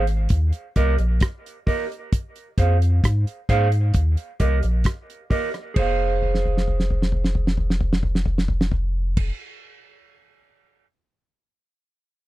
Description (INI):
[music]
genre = roots reggae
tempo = 66 BPM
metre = 4/4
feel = straight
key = F minor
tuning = A4 = 441 Hz
[part]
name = mellow electric guitar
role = accompaniment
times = 0.0-9.4 s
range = G4 to F5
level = -26 LUFS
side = right 4 dB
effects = dub echo
[part]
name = warm sub bass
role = bass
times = 0.0-9.3 s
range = F1 to Ab2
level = -20 LUFS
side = equal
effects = none
[part]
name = damped 70s drum kit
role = drums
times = 0.1-10.9 s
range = crash cymbal, hi-hat, kick drum, rim click, snare drum, toms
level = -23 LUFS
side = equal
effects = none
[sound]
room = little or no reverb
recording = dry, close 1970s-style studio recording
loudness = -19 LUFS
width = side -16 dB against mid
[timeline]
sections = 0.0-5.8 A section; 5.8-9.4 B section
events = drum fill 6.2-9.2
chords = 0.3 Eb; 2.1 Fm; 3.9 Eb; 5.8 Fm